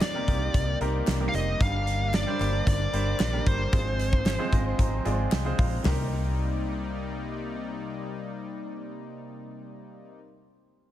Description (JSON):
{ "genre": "1980s-style pop", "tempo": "113 BPM", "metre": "4/4", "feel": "straight", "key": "C minor", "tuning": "A4 = 440 Hz", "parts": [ { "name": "bluesy overdriven lead guitar", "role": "melody", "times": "0.0-5.3 s", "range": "C5 to F5", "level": "-31 LUFS", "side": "left 1 dB", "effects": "distortion, digital delay" }, { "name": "bright concert grand piano", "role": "accompaniment", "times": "0.0-10.9 s", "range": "G3 to C6", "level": "-34 LUFS", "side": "right 1 dB", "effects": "none" }, { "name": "brassy analog pad", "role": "sustained chords", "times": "0.0-10.2 s", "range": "C3 to D5", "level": "-36 LUFS", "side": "left 1 dB", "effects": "chorus" }, { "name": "big rock drum kit", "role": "drums", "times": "0.0-6.0 s", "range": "hi-hat, kick drum, snare drum, tambourine, toms", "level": "-27 LUFS", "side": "equal", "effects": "none" }, { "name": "group handclap", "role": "percussion", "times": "0.0-6.1 s", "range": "none", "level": "-44 LUFS", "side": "left 9 dB", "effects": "none" }, { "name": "vintage muted fingered electric bass", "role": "bass", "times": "0.3-10.2 s", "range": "F1 to C2", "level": "-29 LUFS", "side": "equal", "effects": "none" } ], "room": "small room ambience", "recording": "none", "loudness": "-24 LUFS", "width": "side -12 dB against mid", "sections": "0.0-5.9 A section; 5.9-10.1 B section", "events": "grand piano fill 4.3-5.9", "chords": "0.0 Cm7; 1.6 Gm; 3.7 Fm/Ab; 5.9 Cm7" }